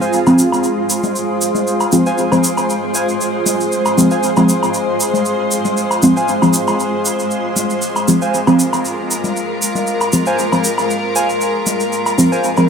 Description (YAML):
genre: dub techno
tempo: 117 BPM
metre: 4/4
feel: swing 54% on 16ths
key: F minor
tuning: A4 = 440 Hz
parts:
  - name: granular cloud pad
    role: sustained chords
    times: 0.0-12.7 s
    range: Ab3 to C5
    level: -18 LUFS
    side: equal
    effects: built-in reverb
  - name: warbly lo-fi synth keys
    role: riff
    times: 0.0-12.5 s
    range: C5 to Ab5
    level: -23 LUFS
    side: right 2 dB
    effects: chorus, dub echo
  - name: tube shaker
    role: percussion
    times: 0.0-12.7 s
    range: none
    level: -22 LUFS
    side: right 1 dB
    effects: none
  - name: metallic inharmonic drone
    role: texture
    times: 0.5-12.7 s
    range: Ab3 to Ab4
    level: -24 LUFS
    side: left 1 dB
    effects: chorus, built-in reverb
  - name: deep mellow chord stab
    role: stabs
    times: 0.3-12.7 s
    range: F3 to C4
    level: -15 LUFS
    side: equal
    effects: chorus, phaser, dub echo
  - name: woodblock and congas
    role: percussion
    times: 0.3-12.7 s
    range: none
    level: -24 LUFS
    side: left 1 dB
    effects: dub echo
room: moderate huge ambient reverb, RT60 4.7 s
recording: none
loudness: -13 LUFS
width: side -6 dB against mid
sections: 0.0-12.7 A section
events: filter sweep on synth stab 0.0-12.7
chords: 0.0 Fm